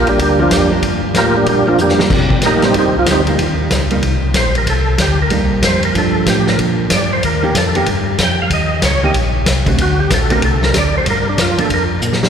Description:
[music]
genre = soul jazz organ trio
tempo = 188 BPM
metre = 4/4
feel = swing 63% on 8ths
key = G minor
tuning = A4 = 440 Hz
[part]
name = percussive tonewheel organ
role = melody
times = 0.0-11.8 s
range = F3 to G5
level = -16 LUFS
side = right 1 dB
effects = slow rotary speaker, overdrive, chorus vibrato
[part]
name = mellow tonewheel organ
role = bass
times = 0.0-12.3 s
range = Bb1 to C3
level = -17 LUFS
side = left 1 dB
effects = chorus vibrato, slow rotary speaker
[part]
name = warm soul drum kit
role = drums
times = 0.1-12.3 s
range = crash cymbal, hi-hat, kick drum, ride cymbal, snare drum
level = -17 LUFS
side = equal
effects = none
[part]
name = vintage hollow-body jazz guitar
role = accompaniment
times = 0.4-11.7 s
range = D3 to G4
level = -20 LUFS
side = right 3 dB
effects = none
[sound]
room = wet cathedral reverb, RT60 5.3 s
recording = recorded in a church or concert hall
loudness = -12 LUFS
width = side -7 dB against mid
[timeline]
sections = 0.0-12.3 A section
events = tonewheel organ solo 0.0-12.3; drum fill 1.8-2.1, 12.0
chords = 0.0 Gm7; 2.1 Cm7; 5.9 Gm7; 7.2 Eb7; 9.8 D7; 11.1 Gm7

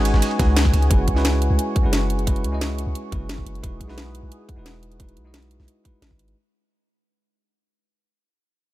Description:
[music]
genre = liquid drum and bass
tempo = 176 BPM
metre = 4/4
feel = straight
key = unclear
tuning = A4 = 441 Hz
[part]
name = bell-like tine electric piano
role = accompaniment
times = 0.0-6.4 s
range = G#3 to D#5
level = -28 LUFS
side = right 1 dB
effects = ping-pong delay
[part]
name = warm analog pad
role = sustained chords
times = 0.0-6.3 s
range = G#4 to D#6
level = -31 LUFS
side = equal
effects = chorus
[part]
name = long sustained 808-style bass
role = bass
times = 0.0-6.3 s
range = E1 to C#2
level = -21 LUFS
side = equal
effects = none
[part]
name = drum and bass drum kit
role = drums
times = 0.1-6.3 s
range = hi-hat, snare drum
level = -27 LUFS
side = equal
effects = overdrive
[part]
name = dusty soul sampler-style drum kit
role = drums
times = 0.1-0.8 s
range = ride cymbal, snare drum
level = -32 LUFS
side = right 2 dB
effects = overdrive, high-pass filter on cymbals, high-pass filter on snare
[part]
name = electronic kick drum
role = drums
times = 0.4-6.2 s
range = none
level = -21 LUFS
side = equal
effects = overdrive
[sound]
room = digital ambience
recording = none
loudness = -18 LUFS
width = side -16 dB against mid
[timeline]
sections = 0.0-6.4 A section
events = fade-out 0.0-6.4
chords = 0.0 C#7sus4; 0.9 F#9sus4; 3.6 Emaj9

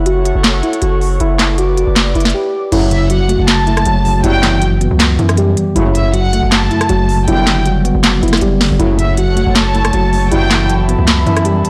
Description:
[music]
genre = hip hop, trap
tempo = 158 BPM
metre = 4/4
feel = half-time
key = F# phrygian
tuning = A4 = 440 Hz
[part]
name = muted felt-like synth keys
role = melody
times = 0.0-11.7 s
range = E4 to G4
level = -21 LUFS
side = equal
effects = chorus, low-pass filter
[part]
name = warbly tape-like pad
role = sustained chords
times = 0.0-2.7, 9.2-11.7 s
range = E4 to D6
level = -26 LUFS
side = equal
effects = chorus, built-in reverb, phaser
[part]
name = distorted 808-style bass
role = bass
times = 0.0-11.6 s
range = F#1 to F#2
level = -18 LUFS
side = equal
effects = distortion
[part]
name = trap drum kit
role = drums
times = 0.1-11.7 s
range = crash cymbal, handclaps, hi-hat, rim click, snare drum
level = -18 LUFS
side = equal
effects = none
[part]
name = mellow tine electric piano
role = accompaniment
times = 2.7-11.7 s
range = F#2 to B3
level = -19 LUFS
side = equal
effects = low-pass filter
[part]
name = warm brass ensemble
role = stabs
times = 2.7-10.7 s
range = A2 to G3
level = -23 LUFS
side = equal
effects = none
[part]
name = warm studio violin section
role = second line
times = 2.9-10.7 s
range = E5 to A5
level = -21 LUFS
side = equal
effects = slapback echo
[sound]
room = light reverb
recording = blown-out, overdriven recording, overdrive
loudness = -13 LUFS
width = mono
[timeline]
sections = 0.0-2.7 A section; 2.7-11.7 B section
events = break 0.0-2.7; drum fill 8.4-8.8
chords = 0.0 F#m; 1.2 G/F#; 2.7 F#m; 4.2 Emadd9/F#; 5.8 F#m; 7.3 G/F#; 8.8 F#m; 10.3 Emadd9/F#

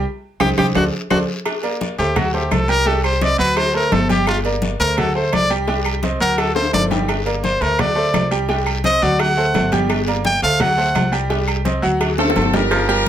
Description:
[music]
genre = latin, salsa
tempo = 171 BPM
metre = 4/4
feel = straight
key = unclear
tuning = A4 = 445 Hz
[part]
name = bright concert grand piano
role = accompaniment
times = 0.0-13.1 s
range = F#3 to G5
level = -22 LUFS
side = right 2 dB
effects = none
[part]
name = upright bass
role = bass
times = 0.0-13.1 s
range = G1 to D2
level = -22 LUFS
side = equal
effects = none
[part]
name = clear tenor saxophone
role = melody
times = 0.4-1.2 s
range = F#4 to G4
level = -20 LUFS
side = left 1 dB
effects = none
[part]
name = claves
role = percussion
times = 0.4-12.9 s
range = none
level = -31 LUFS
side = left 7 dB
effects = none
[part]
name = congas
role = percussion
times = 0.4-13.1 s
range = none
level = -23 LUFS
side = left 2 dB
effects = none
[part]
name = cowbell and bongos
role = percussion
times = 0.4-13.1 s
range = none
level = -25 LUFS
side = left 3 dB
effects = none
[part]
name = guiro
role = percussion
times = 0.4-13.1 s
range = none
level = -34 LUFS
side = left 4 dB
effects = none
[part]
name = timbales and agogo bells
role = percussion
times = 0.4-13.1 s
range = none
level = -27 LUFS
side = right 7 dB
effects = none
[part]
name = clear trumpet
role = melody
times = 2.0-11.1 s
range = F4 to G5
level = -18 LUFS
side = equal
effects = none
[part]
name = bright horn section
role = melody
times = 12.2-13.1 s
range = F#4 to Bb4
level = -19 LUFS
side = equal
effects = none
[part]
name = warm baritone saxophone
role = second line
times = 12.7-13.1 s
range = F3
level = -20 LUFS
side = right 2 dB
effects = slapback echo
[sound]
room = moderate small room reverb, RT60 0.5 s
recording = none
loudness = -15 LUFS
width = side -10 dB against mid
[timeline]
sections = 0.0-1.5 A section; 1.5-12.7 B section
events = drum fill 0.1-1.5, 6.6-7.1, 12.2-12.7; band accent 0.1-1.5; trumpet solo 1.5-12.7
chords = 0.1 Cm; 0.8 D7; 1.5 Bbmaj13; 2.2 D7; 2.9 Cm; 3.6 D7; 4.3 Gm; 5.0 D7; 5.7 Cm; 6.4 D7; 7.1 Gm; 7.8 D7; 8.5 Cm; 9.2 D7; 9.9 Gm; 10.6 D7; 11.3 Cm; 12.0 D7

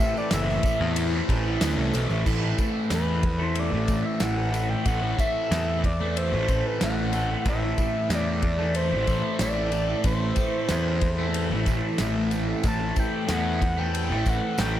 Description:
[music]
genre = psychedelic rock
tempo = 92 BPM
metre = 4/4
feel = straight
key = A dorian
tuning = A4 = 440 Hz
[part]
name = overdriven synth lead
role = melody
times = 0.0-14.8 s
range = B4 to A5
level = -30 LUFS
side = equal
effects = distortion, tape echo
[part]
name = tonewheel organ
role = sustained chords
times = 0.0-14.8 s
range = E3 to E5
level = -39 LUFS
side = right 3 dB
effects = none
[part]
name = fuzz guitar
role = riff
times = 0.0-14.8 s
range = A2 to A3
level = -28 LUFS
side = equal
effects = distortion, phaser, tape echo
[part]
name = tambourine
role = percussion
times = 0.0-14.7 s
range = none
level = -46 LUFS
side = right 5 dB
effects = tape echo
[part]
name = fuzz picked electric bass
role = bass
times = 0.3-14.8 s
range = F#1 to E2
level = -27 LUFS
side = equal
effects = overdrive
[part]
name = damped 70s drum kit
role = drums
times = 0.3-14.7 s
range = crash cymbal, kick drum, ride cymbal, snare drum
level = -29 LUFS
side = equal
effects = none
[sound]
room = light reverb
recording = echo-heavy mix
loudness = -22 LUFS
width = side -12 dB against mid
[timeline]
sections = 0.0-2.3 A section; 2.3-14.8 B section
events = analog synth lead solo 0.0-2.3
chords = 0.0 Am

